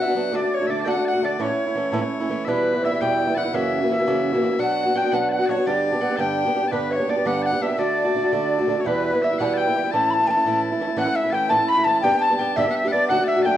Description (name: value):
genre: celtic folk, Celtic jig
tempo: 113 BPM (dotted quarters)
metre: 6/8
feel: straight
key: A mixolydian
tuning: A4 = 441 Hz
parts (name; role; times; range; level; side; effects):
- wooden flute; melody; 0.0-13.6 s; B4 to B5; -23 LUFS; left 2 dB; plate reverb
- Celtic harp; second line; 0.0-13.6 s; B4 to B5; -29 LUFS; right 2 dB; none
- loud bright bagpipes; second line; 0.0-13.6 s; B4 to B5; -29 LUFS; left 5 dB; none
- fingerpicked old ladder-braced acoustic guitar; accompaniment; 0.0-13.6 s; E2 to G4; -22 LUFS; right 2 dB; none
room: moderate studio reverb, RT60 0.7 s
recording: worn, warbling old tape, cassette tape, warbly pitch drift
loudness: -19 LUFS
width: side -11 dB against mid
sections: 0.0-2.5 A section; 2.5-11.0 B section; 11.0-13.6 C section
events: none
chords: 0.3 D; 1.4 A; 2.5 Em; 3.5 F#7; 4.6 Bm; 5.7 G; 7.8 D; 8.9 Em; 9.9 A; 12.0 G